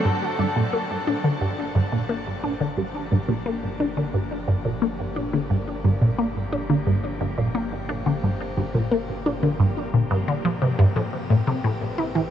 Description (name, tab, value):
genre	ambient, sequencer-driven space music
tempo	88 BPM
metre	4/4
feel	straight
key	G dorian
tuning	A4 = 439 Hz
part	evolving wavetable pad	sustained chords	0.0-12.3 s	E3 to G4	-33 LUFS	left 1 dB	phaser, built-in reverb
part	resonant blip pluck	riff	0.1-12.2 s	G2 to E4	-22 LUFS	equal	phaser, tape echo
part	round analog bass	bass	0.1-12.3 s	G1 to A1	-40 LUFS	left 1 dB	none
room	wet shimmer reverb, RT60 8.7 s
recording	worn, warbling old tape, cassette tape, warbly pitch drift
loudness	-21 LUFS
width	side -10 dB against mid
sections	0.1-12.3 A section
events	fade-in on ambient pad 0.1-12.3; fade-in on analog synth bass 0.1-12.3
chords	0.1 Gm7; 11.0 Am7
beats	| 0.05 0.73 1.42 2.10 | 2.78 3.46 4.14 4.83 | 5.51 6.19 6.87 7.55 | 8.23 8.92 9.60 10.28 | 10.96 11.64